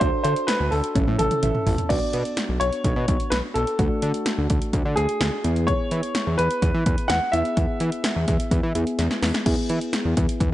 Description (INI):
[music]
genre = synth-pop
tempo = 127 BPM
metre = 4/4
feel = straight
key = unclear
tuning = A4 = 440 Hz
[part]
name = warm baby grand piano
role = melody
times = 0.0-8.7 s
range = G#4 to F#5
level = -25 LUFS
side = equal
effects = analog delay
[part]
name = soft electric-piano-like synth keys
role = accompaniment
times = 0.0-10.5 s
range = A3 to E5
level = -29 LUFS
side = equal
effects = chorus
[part]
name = fat analog bass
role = bass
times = 0.0-10.5 s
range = A1 to E3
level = -24 LUFS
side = equal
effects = none
[part]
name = punchy analog drum machine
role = drums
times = 0.0-10.5 s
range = crash cymbal, hi-hat, kick drum, snare drum, toms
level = -24 LUFS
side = equal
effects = none
[sound]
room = light reverb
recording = nothing above 10.8 kHz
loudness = -20 LUFS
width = side -14 dB against mid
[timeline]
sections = 0.0-1.9 A section; 1.9-9.5 B section; 9.5-10.5 C section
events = drum fill 1.0-1.9, 9.0-9.5; synth keys fill 1.2-1.9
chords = 0.0 D; 1.0 A; 1.9 Bm; 3.8 D; 5.4 E